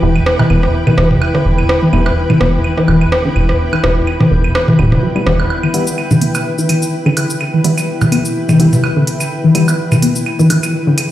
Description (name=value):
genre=minimal techno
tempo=126 BPM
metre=4/4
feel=swing 55% on 16ths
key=E minor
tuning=A4 = 440 Hz
part: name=resonant blip pluck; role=riff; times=0.0-10.9 s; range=D3 to B3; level=-15 LUFS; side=left 1 dB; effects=chorus, phaser, digital delay
part: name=percussive organ stab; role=stabs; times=0.0-9.7 s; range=G3 to E4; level=-23 LUFS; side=equal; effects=chorus, tape echo
part: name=rubbery square bass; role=bass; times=0.0-5.4 s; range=D1 to E1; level=-13 LUFS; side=equal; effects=tube saturation
part: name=granular cloud pad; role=texture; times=0.0-11.1 s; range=E4 to G5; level=-20 LUFS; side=left 1 dB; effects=built-in reverb
part: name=booming analog drum machine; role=percussion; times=0.2-11.1 s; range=claves, rim click, toms, woodblock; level=-17 LUFS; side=right 1 dB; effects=overdrive, tape echo
part: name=electronic hi-hat and cabasa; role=drums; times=5.7-11.1 s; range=none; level=-23 LUFS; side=equal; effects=overdrive, low-pass filter on hats, low-pass filter on perc, low-pass filter on room
room=moderate lush hall reverb, RT60 2.1 s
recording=played on a big sound system in a bare room, large studio reverb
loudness=-11 LUFS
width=side -13 dB against mid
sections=0.0-5.5 A section; 5.5-11.1 B section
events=filter sweep on synth stab 0.0-5.5; build-up 5.5-11.1; filter sweep on synth arpeggio sound 5.5-11.1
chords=0.0 Em